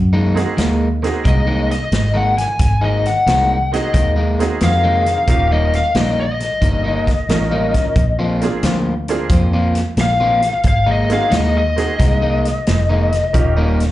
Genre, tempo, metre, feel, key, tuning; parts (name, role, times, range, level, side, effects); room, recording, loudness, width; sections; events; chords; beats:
electric blues shuffle; 89 BPM; 4/4; swing 68% on 8ths; A4 = 440 Hz
fingered electric bass; bass; 0.0-13.9 s; Eb1 to Gb2; -18 LUFS; equal
electric guitar at the edge of break-up; riff; 0.1-13.8 s; Eb3 to F4; -21 LUFS; left 1 dB; slapback echo
honky-tonk upright piano; accompaniment; 0.3-13.8 s; Bb3 to Bb4; -23 LUFS; right 5 dB; plate reverb, slapback echo
vintage drum kit; drums; 0.4-13.9 s; hi-hat, kick drum, snare drum; -20 LUFS; equal
lead guitar through a small cranked amp; melody; 1.3-13.5 s; Eb5 to Ab5; -18 LUFS; left 3 dB; overdrive, plate reverb, slapback echo
light reverb; live gig heard through the venue's PA, club reverb, nothing above 10.9 kHz; -14 LUFS; side -15 dB against mid
0.0-13.9 A section
lead electric guitar solo 0.0-13.9
0.0 Ab9; 5.3 Eb9; 8.0 Bb9; 10.7 Ab9; 13.3 Eb9
0.58 1.25 1.92 | 2.59 3.27 3.94 4.61 | 5.28 5.95 6.62 7.29 | 7.97 8.64 9.31 9.98 | 10.65 11.32 12.00 12.67 | 13.34